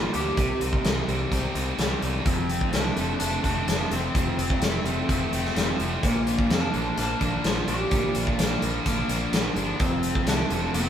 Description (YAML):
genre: classic rock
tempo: 127 BPM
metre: 4/4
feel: straight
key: unclear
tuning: A4 = 436 Hz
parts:
  - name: lead guitar through a small cranked amp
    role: melody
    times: 0.0-10.9 s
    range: Bb3 to G4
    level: -30 LUFS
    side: left 1 dB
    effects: overdrive
  - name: distorted electric guitar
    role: riff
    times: 0.0-10.9 s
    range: F2 to Eb4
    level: -30 LUFS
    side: left 4 dB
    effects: distortion
  - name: distorted electric guitar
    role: riff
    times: 0.0-10.9 s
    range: F2 to Eb4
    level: -30 LUFS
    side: right 5 dB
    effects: distortion
  - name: modern bright picked electric bass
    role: bass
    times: 0.0-10.9 s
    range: F1 to F2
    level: -31 LUFS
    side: equal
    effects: none
  - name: big rock drum kit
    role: drums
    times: 0.1-10.9 s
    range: hi-hat, kick drum, snare drum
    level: -26 LUFS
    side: equal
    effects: none
  - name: mellow tonewheel organ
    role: sustained chords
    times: 6.0-10.9 s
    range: A3 to Bb4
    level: -40 LUFS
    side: right 1 dB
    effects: none
room: wet studio reverb, RT60 0.8 s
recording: band playing live in one room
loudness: -22 LUFS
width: side -9 dB against mid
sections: 0.0-10.9 A section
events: none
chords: 0.4 Cm; 2.3 F; 6.0 Bb; 9.8 F